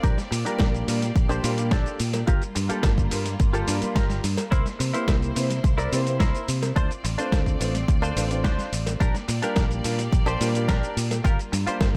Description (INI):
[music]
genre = nu-disco, nu disco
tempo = 107 BPM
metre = 4/4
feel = straight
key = unclear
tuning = A4 = 440 Hz
[part]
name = bright symphonic string section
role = sustained chords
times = 0.0-12.0 s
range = G3 to D5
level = -37 LUFS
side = equal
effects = sidechain pumping
[part]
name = direct-recorded clean electric guitar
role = riff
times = 0.0-11.9 s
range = D4 to D5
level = -34 LUFS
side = equal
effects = analog chorus, vintage 12-bit sampler grit, low-pass filter, tape echo
[part]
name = fingered electric bass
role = bass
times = 0.0-12.0 s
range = G1 to C3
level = -29 LUFS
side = equal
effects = none
[part]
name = dusty soul sampler-style drum kit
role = drums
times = 0.0-11.9 s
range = hi-hat, shaker, snare drum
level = -34 LUFS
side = equal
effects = overdrive, tape echo
[part]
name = electronic kick drum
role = drums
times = 0.0-12.0 s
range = none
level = -24 LUFS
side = equal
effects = none
[part]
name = clear concert grand piano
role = accompaniment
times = 0.5-12.0 s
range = G3 to C5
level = -34 LUFS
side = equal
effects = sidechain pumping, tape echo
[part]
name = cowbell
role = percussion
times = 0.6-11.9 s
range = none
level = -38 LUFS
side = equal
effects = none
[sound]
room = light reverb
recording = echo-heavy mix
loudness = -24 LUFS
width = mono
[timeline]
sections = 0.0-12.0 A section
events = filter sweep on clean electric guitar 0.0-12.0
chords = 0.0 Bb6; 2.3 Gm7; 4.5 C7; 6.8 Dm7; 9.0 Bb6; 11.2 Gm7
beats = | 0.03 0.59 1.16 1.72 | 2.28 2.84 3.40 3.96 | 4.52 5.08 5.64 6.20 | 6.76 7.32 7.88 8.45 | 9.01 9.57 10.13 10.69 | 11.25 11.81